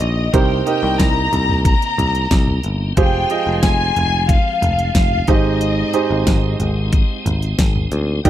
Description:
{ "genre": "piano-driven pop", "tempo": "91 BPM", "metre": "4/4", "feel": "straight", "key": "unclear", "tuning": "A4 = 440 Hz", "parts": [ { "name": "dark studio violin section", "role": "melody", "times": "0.0-8.3 s", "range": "Eb5 to Bb5", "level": "-21 LUFS", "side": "left 2 dB", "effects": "tape echo" }, { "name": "warm grand piano", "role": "accompaniment", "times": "0.0-8.3 s", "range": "Ab2 to Eb5", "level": "-21 LUFS", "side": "right 6 dB", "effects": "none" }, { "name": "tonewheel organ", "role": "sustained chords", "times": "0.0-8.3 s", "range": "F3 to Eb4", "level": "-28 LUFS", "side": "left 2 dB", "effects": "overdrive, chorus vibrato, slow rotary speaker" }, { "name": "picked electric bass", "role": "bass", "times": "0.0-8.3 s", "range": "F1 to Eb2", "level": "-19 LUFS", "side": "left 1 dB", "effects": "none" }, { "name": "pop drum kit", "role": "drums", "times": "0.0-8.3 s", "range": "hi-hat, kick drum, snare drum, toms", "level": "-17 LUFS", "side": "equal", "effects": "none" } ], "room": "little or no reverb", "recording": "dry, close 1970s-style studio recording", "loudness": "-14 LUFS", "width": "side -12 dB against mid", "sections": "0.0-8.3 A section", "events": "none", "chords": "0.3 Cm7; 3.0 Fmadd9; 5.3 Abmaj7" }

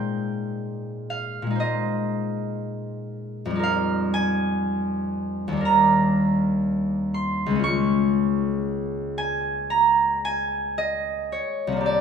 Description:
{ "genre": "classical, solo harp piece", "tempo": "56-62 BPM", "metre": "4/4", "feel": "rubato", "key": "unclear", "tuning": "A4 = 440 Hz", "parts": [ { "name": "concert harp", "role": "solo", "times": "0.0-12.0 s", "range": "C2 to Db6", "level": "-22 LUFS", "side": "equal", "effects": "none" } ], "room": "moderate recital hall reverb, RT60 1.8 s", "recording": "close, detailed microphones", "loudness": "-21 LUFS", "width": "side -6 dB against mid", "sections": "0.0-12.0 A section", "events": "none", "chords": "0.0 Bb9sus4; 3.6 Fm11; 5.7 Ebmaj7; 7.6 Db" }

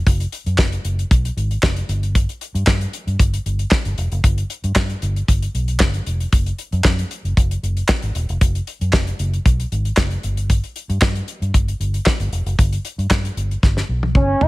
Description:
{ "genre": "early-eighties boogie funk", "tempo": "115 BPM", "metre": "4/4", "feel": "straight", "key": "unclear", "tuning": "A4 = 436 Hz", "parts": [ { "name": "vintage muted fingered electric bass", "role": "bass", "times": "0.0-14.5 s", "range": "E1 to G2", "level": "-20 LUFS", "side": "equal", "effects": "none" }, { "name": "damped 70s drum kit", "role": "drums", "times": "0.1-14.5 s", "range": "handclaps, hi-hat, kick drum, snare drum, toms", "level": "-18 LUFS", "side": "equal", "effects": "none" }, { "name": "expressive synth lead", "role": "melody", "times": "14.2-14.5 s", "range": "C#4 to E4", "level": "-17 LUFS", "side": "right 1 dB", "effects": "chorus" } ], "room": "small room reverb", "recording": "none", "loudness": "-17 LUFS", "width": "side -20 dB against mid", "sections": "0.0-14.5 A section", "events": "drum fill 13.6-14.5", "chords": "none" }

